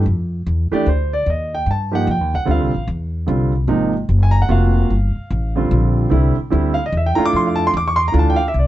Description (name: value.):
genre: jazz, small-group swing and bop.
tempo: 148 BPM.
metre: 3/4.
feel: swing 64% on 8ths.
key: F major.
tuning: A4 = 438 Hz.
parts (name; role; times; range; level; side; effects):
warm concert grand piano; accompaniment; 0.0-8.7 s; C3 to D6; -18 LUFS; right 2 dB; none.
upright bass; bass; 0.0-8.7 s; F1 to G2; -17 LUFS; equal; none.
room: light reverb.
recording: dark, warm production, nothing above 7.9 kHz.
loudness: -15 LUFS.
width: side -14 dB against mid.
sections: 0.1-8.7 A section.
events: none.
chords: 0.1 F5; 1.3 Ebadd9; 2.5 Dm9; 3.7 Ab13; 4.9 Gm9; 6.1 Cadd9; 7.3 F6.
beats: | 0.05 0.46 0.86 | 1.26 1.67 2.07 | 2.48 2.88 3.28 | 3.69 4.09 4.50 | 4.90 5.30 5.71 | 6.11 6.52 6.92 | 7.33 7.73 8.14 | 8.54.